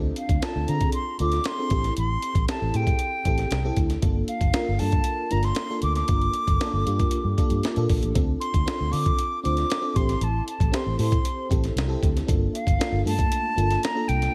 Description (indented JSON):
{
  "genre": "polished 1980s jazz-funk pop",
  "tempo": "116 BPM",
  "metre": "4/4",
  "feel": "straight",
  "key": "G minor",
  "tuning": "A4 = 440 Hz",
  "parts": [
    { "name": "FM electric piano with soft pad layer", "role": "accompaniment", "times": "0.0-14.3 s", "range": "A3 to C5", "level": "-32 LUFS", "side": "equal", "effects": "tremolo, ensemble chorus" },
    { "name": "vintage muted fingered electric bass", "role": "bass", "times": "0.0-14.3 s", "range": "G1 to D3", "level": "-28 LUFS", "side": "equal", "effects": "none" },
    { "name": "silver concert flute", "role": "melody", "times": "0.2-14.3 s", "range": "F5 to D6", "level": "-31 LUFS", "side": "equal", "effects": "none" },
    { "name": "breakbeat sampler-style drum kit", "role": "drums", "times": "0.2-14.3 s", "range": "hi-hat, kick drum, snare drum", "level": "-28 LUFS", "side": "equal", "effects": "none" }
  ],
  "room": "digital ambience",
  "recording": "none",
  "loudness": "-24 LUFS",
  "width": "mono",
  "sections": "0.0-14.3 A section",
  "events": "none",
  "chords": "0.0 Dm7; 1.7 Am7; 4.0 Gm7; 8.2 Dm7; 10.0 Am7; 12.3 Gm7",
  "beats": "0.43 0.94 1.46 | 1.97 2.48 3.00 3.52 | 4.03 4.54 5.06 5.58 | 6.09 6.61 7.12 7.64 | 8.15 8.67 9.19 9.70 | 10.22 10.73 11.25 11.77 | 12.28 12.80 13.32 13.83"
}